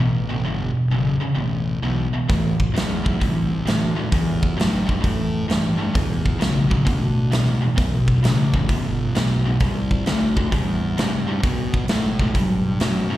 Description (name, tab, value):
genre	blues rock power trio and southern rock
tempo	131 BPM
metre	4/4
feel	swing 66% on 8ths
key	E minor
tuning	A4 = 440 Hz
part	distorted electric guitar	riff	0.0-13.2 s	E2 to A3	-22 LUFS	equal	distortion
part	fuzz fingered electric bass	bass	0.0-13.2 s	F#1 to B2	-24 LUFS	equal	overdrive
part	big rock drum kit	drums	2.3-13.0 s	hi-hat, kick drum, snare drum	-22 LUFS	equal	none
room	studio reverb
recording	live gig heard through the venue's PA, recital hall reverb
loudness	-18 LUFS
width	side -14 dB against mid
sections	0.0-13.2 A section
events	none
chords	0.0 Emadd9; 2.3 A7(no3); 6.0 Em7; 9.6 C; 11.4 B5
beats	0.01 | 0.46 0.92 1.38 1.83 | 2.29 2.75 3.21 3.67 | 4.12 4.58 5.04 5.50 | 5.95 6.41 6.87 7.33 | 7.78 8.24 8.70 9.16 | 9.61 10.07 10.53 10.99 | 11.44 11.90 12.36 12.82